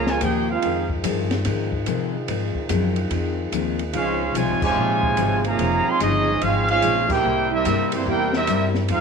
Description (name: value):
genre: jazz, big band swing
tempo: 145 BPM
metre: 4/4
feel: swing 65% on 8ths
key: F minor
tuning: A4 = 436 Hz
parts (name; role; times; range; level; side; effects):
- warm trumpet section; melody; 0.0-0.9, 4.0-9.0 s; Bb3 to C6; -22 LUFS; right 1 dB; slapback echo
- warm trombone section; second line; 0.0-0.9, 3.9-9.0 s; C3 to G4; -25 LUFS; right 11 dB; none
- picked steel-string acoustic guitar; accompaniment; 0.0-9.0 s; F2 to Ab4; -28 LUFS; left 16 dB; none
- mellow trombone section; sustained chords; 0.0-9.0 s; Bb2 to Ab4; -30 LUFS; left 1 dB; none
- upright bass; bass; 0.0-9.0 s; F1 to C3; -26 LUFS; left 1 dB; none
- open jazz drum kit; drums; 0.1-9.0 s; crash cymbal, hi-hat, kick drum, ride cymbal, snare drum; -29 LUFS; equal; none
room: light reverb, small room ambience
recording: 1960s-style stereo with parts hard left and right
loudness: -19 LUFS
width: side -5 dB against mid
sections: 0.0-9.0 A section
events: band accent 4.6, 7.0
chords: 0.0 Bbm7; 0.6 Fm7; 3.9 Dbmaj7; 7.2 C7